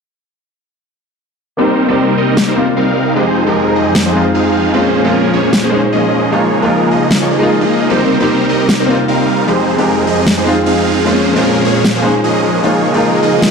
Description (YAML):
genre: future bass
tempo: 152 BPM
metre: 4/4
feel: swing 55% on 16ths, half-time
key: F minor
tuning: A4 = 440 Hz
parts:
  - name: bright baby grand piano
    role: accompaniment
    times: 1.6-13.5 s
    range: Ab3 to C5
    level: -16 LUFS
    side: left 1 dB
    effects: low-pass filter, digital delay
  - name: airy breathy pad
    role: sustained chords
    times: 1.8-13.5 s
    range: F2 to Eb5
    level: -20 LUFS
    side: equal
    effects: chorus
  - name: supersaw chords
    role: riff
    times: 1.6-13.4 s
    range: F3 to F5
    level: -13 LUFS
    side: right 1 dB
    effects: phaser, low-pass filter, digital delay
  - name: electronic snare drum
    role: drums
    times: 2.4-13.5 s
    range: none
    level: -16 LUFS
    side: equal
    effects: none
  - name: swell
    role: sound effects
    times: 13.5 s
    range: none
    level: barely audible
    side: none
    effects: none
room: moderate lush hall reverb, RT60 2.3 s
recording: dark, warm production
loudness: -10 LUFS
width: side -5 dB against mid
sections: 1.6-13.5 A section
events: filter sweep on grand piano 1.6-13.5; filter sweep on analog synth pad 1.6-13.5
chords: 1.6 Cm7; 3.2 Fm7; 4.7 Bbm9; 6.3 Db69; 7.9 Cm7; 9.5 Fm7; 11.1 Bbm9; 12.6 Db69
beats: | 1.58 1.98 2.37 2.77 | 3.16 3.56 3.95 4.34 | 4.74 5.13 5.53 5.92 | 6.32 6.71 7.11 7.50 | 7.90 8.29 8.69 9.08 | 9.48 9.87 10.27 10.66 | 11.05 11.45 11.85 12.24 | 12.63 13.03 13.42